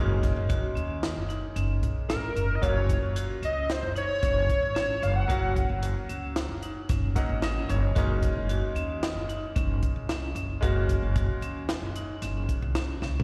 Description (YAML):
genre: progressive instrumental, band music in an uneven meter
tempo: 112 BPM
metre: 5/4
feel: straight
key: unclear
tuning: A4 = 445 Hz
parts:
  - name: bright grand piano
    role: accompaniment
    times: 0.0-13.2 s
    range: Gb3 to Gb5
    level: -38 LUFS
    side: equal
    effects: slapback echo
  - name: vibraphone with hard mallets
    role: arpeggios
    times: 0.0-13.2 s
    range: Db4 to Gb4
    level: -40 LUFS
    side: equal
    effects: slapback echo, delay
  - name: upright bass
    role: bass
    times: 0.0-13.2 s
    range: Gb1 to Eb2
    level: -31 LUFS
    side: equal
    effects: none
  - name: compact cocktail drum kit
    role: drums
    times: 0.2-13.2 s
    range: hi-hat, kick drum, snare drum, toms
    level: -32 LUFS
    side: equal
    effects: none
  - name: hollow square lead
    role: melody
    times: 2.1-5.7 s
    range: Bb4 to Gb5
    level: -31 LUFS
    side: equal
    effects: chorus, slapback echo, delay
room: light reverb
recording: live gig heard through the venue's PA, recital hall reverb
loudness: -28 LUFS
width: mono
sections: 0.0-13.2 A section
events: grand piano fill 6.9-8.0; drum fill 13.0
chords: 0.0 Gb69; 2.6 Ebm7/Gb; 8.0 Gb69